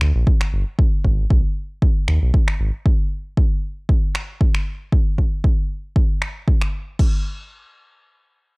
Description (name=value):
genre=deep house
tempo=116 BPM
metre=4/4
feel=swing 54% on 16ths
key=unclear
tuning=A4 = 440 Hz
part: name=round analog bass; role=bass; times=0.0-2.7 s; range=G1 to Eb2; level=-18 LUFS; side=equal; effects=tube saturation, sidechain pumping
part: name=deep house drum kit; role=drums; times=0.0-7.1 s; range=crash cymbal, finger snaps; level=-28 LUFS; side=equal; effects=overdrive
part: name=electronic kick drum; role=drums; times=0.3-7.1 s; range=none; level=-17 LUFS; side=equal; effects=overdrive
room=digital ambience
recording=dry, gritty hardware recording, transformer saturation, cassette tape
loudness=-17 LUFS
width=side -35 dB against mid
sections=0.0-7.0 A section; 7.0-8.6 B section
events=none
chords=none